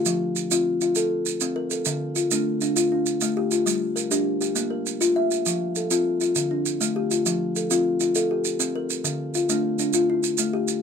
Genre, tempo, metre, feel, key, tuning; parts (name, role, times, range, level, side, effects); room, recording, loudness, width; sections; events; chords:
southern african traditional, mbira-style interlocking cycle; 134 BPM (dotted quarters); 12/8; straight; F major; A4 = 439 Hz
kalimba; arpeggios; 0.0-10.8 s; D3 to E5; -22 LUFS; left 2 dB
maracas; percussion; 0.1-10.8 s; -26 LUFS; right 10 dB
moderate small room reverb, RT60 0.5 s; -21 LUFS; side -6 dB against mid
0.0-7.3 A section; 7.3-10.8 B section
0.1 F; 1.9 Dm; 3.7 Gm; 4.6 Bb5; 5.5 F; 6.4 Dm; 7.3 F; 9.0 Dm